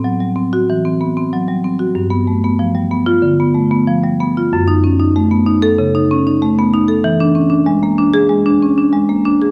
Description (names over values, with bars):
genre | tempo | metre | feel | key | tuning
classical, contemporary piece for solo marimba | 94 BPM | 4/4 | rubato | unclear | A4 = 439 Hz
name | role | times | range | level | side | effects
marimba with medium hard mallets | solo | 0.0-9.5 s | F#2 to A4 | -14 LUFS | equal | none
room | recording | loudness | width
moderate recital hall reverb, RT60 1.9 s | none | -14 LUFS | mono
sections
0.0-9.5 A section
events
none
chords
0.0 Am6; 2.0 G9; 4.5 F#m6; 7.0 E7